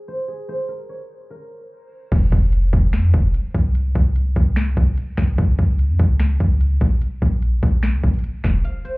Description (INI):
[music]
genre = hip hop, trap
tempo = 147 BPM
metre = 4/4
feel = half-time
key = F minor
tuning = A4 = 440 Hz
[part]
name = guzheng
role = melody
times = 0.0-3.4, 8.6-9.0 s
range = Ab4 to F5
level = -31 LUFS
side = right 1 dB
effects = low-pass filter
[part]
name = clean 808-style bass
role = bass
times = 2.1-8.6 s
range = E1 to F2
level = -17 LUFS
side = equal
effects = none
[part]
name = trap drum kit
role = drums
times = 2.1-8.9 s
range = crash cymbal, finger snaps, hi-hat, kick drum, snare drum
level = -19 LUFS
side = equal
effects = none
[sound]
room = little or no reverb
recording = heard muffled through a wall, club reverb, EQ, low-pass filter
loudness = -16 LUFS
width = side -24 dB against mid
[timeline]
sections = 0.0-2.1 A section; 2.1-9.0 B section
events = filter sweep 0.0-2.1; break 8.6-9.0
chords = 0.0 N.C.; 2.1 F5; 3.8 N.C.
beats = 0.08 | 0.48 0.89 1.30 1.71 | 2.12 2.53 2.93 3.34 | 3.75 4.16 4.57 4.97 | 5.38 5.79 6.20 6.61 | 7.02 7.42 7.83 8.24 | 8.65